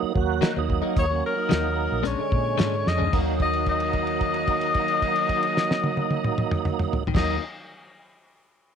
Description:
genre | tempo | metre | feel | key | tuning
straight-eighth soul blues | 111 BPM | 4/4 | straight | Eb minor | A4 = 440 Hz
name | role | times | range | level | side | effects
tonewheel organ | accompaniment | 0.0-7.4 s | D3 to Gb4 | -28 LUFS | right 13 dB | slow rotary speaker, overdrive, chorus vibrato
vintage muted fingered electric bass | bass | 0.0-7.4 s | Bb1 to Bb2 | -28 LUFS | equal | none
cloth-damped thuddy drum kit | drums | 0.2-7.3 s | crash cymbal, hi-hat, kick drum, snare drum, toms | -26 LUFS | equal | none
direct-recorded clean electric guitar | stabs | 0.4-7.4 s | Bb2 to Eb4 | -31 LUFS | left 13 dB | none
breathy tenor saxophone | melody | 1.0-7.4 s | Bb4 to Eb5 | -26 LUFS | left 5 dB | none
room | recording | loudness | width
moderate spring reverb, RT60 1.7 s, small room ambience | 1960s-style stereo with parts hard left and right | -21 LUFS | side -7 dB against mid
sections
0.0-3.1 A section; 3.1-7.5 B section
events
drum fill 2.9; held note 3.1-7.1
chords
0.0 Ebm; 2.0 Bb7#9; 3.1 Ebm

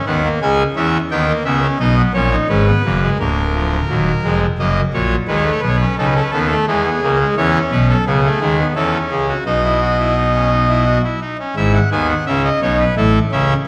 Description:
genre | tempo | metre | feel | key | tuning
classical, baroque-style 3-part fugue for pipe organ | 86 BPM | 3/4 | straight | E major from 7.4 s | A4 = 435 Hz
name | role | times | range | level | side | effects
pipe organ, trumpet | solo | 0.0-13.5 s | D1 to G#5 | -16 LUFS | equal | none
room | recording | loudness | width
wet recital hall reverb, RT60 1.5 s | vinyl crackle | -16 LUFS | mono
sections
0.0-3.2 A section; 3.2-11.6 B section; 11.6-13.7 C section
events
none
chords
0.4 C#m; 1.1 D#7; 2.5 G#m; 3.2 A#7/D; 4.6 D#m/F#; 5.3 B7; 6.7 E; 7.4 C#m; 8.8 A/E; 9.5 B; 11.6 E/G#; 13.0 A

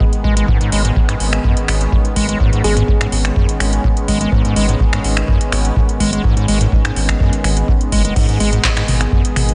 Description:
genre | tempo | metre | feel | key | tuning
acid house | 125 BPM | 4/4 | straight | G# minor | A4 = 441 Hz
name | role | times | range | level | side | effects
warm analog pad | sustained chords | 0.0-9.5 s | D#3 to G#4 | -24 LUFS | equal | chorus, tremolo, sidechain pumping
acid bass, square | riff | 0.0-9.2 s | F#2 to G#3 | -22 LUFS | equal | overdrive, analog chorus, delay
electronic kick drum | drums | 0.0-9.2 s | none | -19 LUFS | equal | none
booming analog drum machine | drums | 0.1-9.5 s | crash cymbal, finger snaps, handclaps, hi-hat, toms | -23 LUFS | equal | none
saturated sub bass | bass | 0.2-9.5 s | F#1 to G#1 | -20 LUFS | equal | sidechain pumping
thumb-piano-like synth pluck | melody | 2.6-3.1 s | G#4 | -27 LUFS | equal | chorus, tape echo
room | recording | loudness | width
moderate lush hall reverb, RT60 2.0 s | dreamy mix soaked in reverb, nothing above 10.7 kHz | -15 LUFS | mono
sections
0.0-9.5 A section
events
none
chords
0.0 G#m

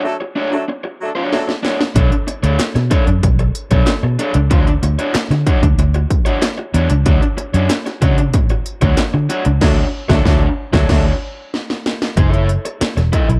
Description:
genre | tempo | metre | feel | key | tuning
funk | 94 BPM | 4/4 | straight | unclear | A4 = 440 Hz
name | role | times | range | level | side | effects
warm horn section | second line | 0.0-1.5, 9.6-11.1 s | F#3 to A4 | -23 LUFS | equal | none
raw garage guitar | accompaniment | 0.0-13.3 s | D4 to D#5 | -23 LUFS | equal | overdrive, spring reverb
techno drum kit | drums | 1.3-13.4 s | crash cymbal, hi-hat, kick drum, snare drum | -18 LUFS | equal | none
vintage muted fingered electric bass | bass | 2.0-13.4 s | E1 to D3 | -17 LUFS | equal | none
group handclap | percussion | 2.6-9.1 s | none | -28 LUFS | equal | none
room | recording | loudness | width
little or no reverb | dark, warm production | -16 LUFS | mono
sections
0.0-12.2 A section; 12.2-13.4 B section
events
band accent 0.0-2.0, 9.6-12.2; drum fill 1.3-2.0, 11.5-12.2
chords
0.0 Dmaj7; 2.0 Bm9; 4.5 Dmaj7; 12.2 F#m7

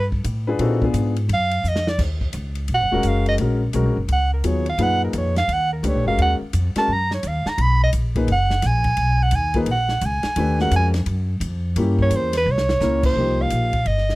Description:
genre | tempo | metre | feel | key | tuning
modal jazz | 172 BPM | 4/4 | swing 64% on 8ths | Eb minor | A4 = 440 Hz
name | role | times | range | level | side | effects
warm soprano saxophone | melody | 0.0-14.2 s | Bb4 to Cb6 | -21 LUFS | right 2 dB | none
upright bass | bass | 0.0-14.2 s | Eb1 to Bb2 | -21 LUFS | equal | none
swinging big-band drum kit | drums | 0.1-14.2 s | crash cymbal, hi-hat, kick drum, ride cymbal, snare drum | -28 LUFS | equal | none
warm upright piano | accompaniment | 0.5-13.7 s | Bb2 to B4 | -23 LUFS | left 3 dB | none
room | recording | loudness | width
little or no reverb | dry, close 1970s-style studio recording | -18 LUFS | side -19 dB against mid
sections
0.0-2.0 A section; 2.0-13.2 A section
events
soprano saxophone solo 0.0-13.2; drum fill 1.6-2.0, 12.5-12.8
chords
0.0 G7sus2; 0.6 Bb7b9; 2.0 Ebm9; 7.6 Abm9; 11.8 C7b9; 13.2 F9sus4

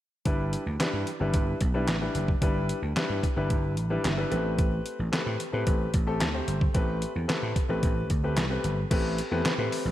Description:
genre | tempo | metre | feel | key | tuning
early-eighties boogie funk | 111 BPM | 4/4 | straight | unclear | A4 = 440 Hz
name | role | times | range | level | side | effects
warm concert grand piano | accompaniment | 0.3-9.9 s | G3 to E5 | -30 LUFS | left 2 dB | slapback echo
vintage slap bass | bass | 0.3-9.9 s | F#1 to A2 | -29 LUFS | right 1 dB | none
detuned 8-bit digital drum machine | drums | 0.3-9.8 s | crash cymbal, handclaps, hi-hat, kick drum, snare drum | -28 LUFS | equal | none
room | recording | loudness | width
light reverb | none | -25 LUFS | side -13 dB against mid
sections
0.3-8.9 A section; 8.9-9.9 B section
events
grand piano fill 3.8-4.6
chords
0.3 G6; 4.3 Am9

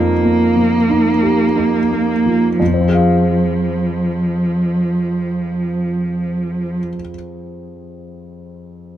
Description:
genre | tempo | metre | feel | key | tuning
neoclassical piano and strings | 44 BPM | 4/4 | rubato | F minor | A4 = 440 Hz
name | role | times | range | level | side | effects
warm cello | second line | 0.0-6.8 s | F3 to Bb3 | -17 LUFS | right 2 dB | none
warm upright piano | accompaniment | 0.0-9.0 s | F2 to F5 | -18 LUFS | left 1 dB | none
room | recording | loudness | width
light reverb | dark, warm production | -14 LUFS | side -11 dB against mid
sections
0.0-2.6 A section; 2.6-8.1 B section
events
slowing down 0.0-2.6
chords
0.0 Ebadd9/F; 2.6 Fm

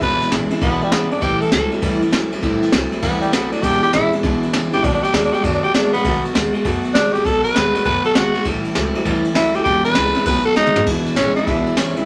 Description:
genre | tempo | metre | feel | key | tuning
rockabilly | 199 BPM | 4/4 | swing 65% on 8ths | E major | A4 = 440 Hz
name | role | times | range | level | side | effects
growling tenor saxophone | melody | 0.0-12.1 s | G3 to B4 | -20 LUFS | equal | none
picked steel-string acoustic guitar | accompaniment | 0.0-12.1 s | E2 to F#4 | -27 LUFS | equal | none
electric guitar through a small old amp | riff | 0.0-12.1 s | E2 to G#3 | -23 LUFS | equal | none
upright bass | bass | 0.0-12.1 s | E1 to F#2 | -30 LUFS | equal | none
jazz brush drum kit | drums | 0.0-12.0 s | crash cymbal, kick drum, ride cymbal, snare drum, toms | -24 LUFS | equal | none
room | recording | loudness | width
moderate club reverb, RT60 0.5 s | none | -17 LUFS | mono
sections
0.0-10.9 A section; 10.9-12.1 B section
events
tenor saxophone solo 0.0-10.9; drum fill 10.6-10.9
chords
0.0 E7; 1.2 A7; 2.4 Am7; 3.6 E7; 4.8 B7; 8.5 A7; 9.7 E7; 10.3 B7; 10.9 E7

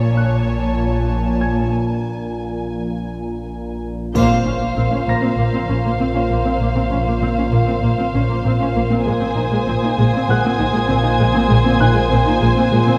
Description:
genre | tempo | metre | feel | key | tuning
cinematic, suspense film score | 98 BPM | 4/4 | straight | Bb minor | A4 = 440 Hz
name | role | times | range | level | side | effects
muted symphonic violin section | melody | 0.0-13.0 s | Db5 to Ab5 | -26 LUFS | equal | none
muted studio cello section | bass | 0.0-12.9 s | Bb2 | -24 LUFS | equal | none
muted studio double bass section | bass | 0.0-12.8 s | Bb1 | -25 LUFS | equal | none
organ-like drone | drone | 0.0-13.0 s | Bb1 | -26 LUFS | equal | ensemble chorus, built-in reverb
muted studio violin section | texture | 0.0-3.8, 9.1-13.0 s | Ab5 to Ab6 | -33 LUFS | equal | none
warm grand piano | texture | 0.2-13.0 s | Gb5 to Bb6 | -32 LUFS | equal | none
muted studio viola section | accompaniment | 4.1-12.9 s | Ab3 to Eb4 | -25 LUFS | equal | none
impact | sound effects | 4.1-6.6 s | none | -29 LUFS | equal | none
muted studio violin section | second line | 4.2-13.0 s | C5 | -28 LUFS | equal | none
concert harp | riff | 4.2-13.0 s | Bb2 to Bb3 | -23 LUFS | equal | none
triangle | percussion | 4.2-5.3 s | none | -40 LUFS | equal | none
room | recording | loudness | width
moderate scoring stage reverb, RT60 1.9 s | dark, warm production | -18 LUFS | mono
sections
0.0-4.2 A section; 4.2-13.0 B section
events
break 1.7-4.2; band accent 4.2-4.8; impact 4.2-6.6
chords
0.0 Db5/Bb; 4.2 Bbsus2; 9.1 Ab/Bb

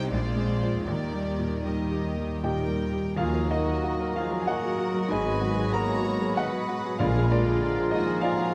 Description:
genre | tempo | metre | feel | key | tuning
classical, romantic movement for piano and orchestra | 77-100 BPM | 3/4 | rubato | Eb major, Eb minor from 3.2 s | A4 = 440 Hz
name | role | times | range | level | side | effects
clear grand piano | melody | 0.0-8.5 s | Bb1 to Bb5 | -32 LUFS | equal | none
warm symphonic violin section | melody | 0.0-8.5 s | D5 to Bb5 | -42 LUFS | equal | none
warm symphonic violin section | second line | 0.0-8.5 s | Eb4 to Db5 | -40 LUFS | equal | none
dark symphonic viola section | accompaniment | 0.0-8.5 s | D3 to Gb4 | -38 LUFS | equal | none
warm symphonic cello section | bass | 0.0-7.5 s | Eb2 to Eb3 | -36 LUFS | equal | none
warm symphonic double bass section | bass | 0.0-7.5 s | Ab1 to Eb2 | -35 LUFS | equal | none
clear French horn section | sustained chords | 2.4-8.5 s | D3 to Bb3 | -38 LUFS | equal | none
bright clarinet | second line | 3.1-8.5 s | F4 to Gb4 | -38 LUFS | equal | none
large flute ensemble | second line | 3.2-8.5 s | Bb5 to Cb6 | -41 LUFS | equal | none
warm oboe | second line | 3.2-8.5 s | Bb4 to Eb5 | -40 LUFS | equal | none
mellow bassoon | accompaniment | 3.2-8.5 s | Ab3 to Bb3 | -38 LUFS | equal | none
clear trombone section | sustained chords | 3.2-8.5 s | F3 to Cb4 | -37 LUFS | equal | none
clear tuba | bass | 3.2-7.5 s | Ab1 to Eb2 | -39 LUFS | equal | none
timpani | percussion | 3.2-7.9 s | Bb2 to Eb3 | -37 LUFS | equal | none
room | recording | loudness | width
light reverb | close, detailed microphones, vinyl crackle | -27 LUFS | mono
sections
0.0-3.2 A section; 3.2-8.5 B section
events
none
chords
0.1 Bb9; 0.9 Eb; 3.2 Ebm; 5.1 Abm7; 7.0 Bb7

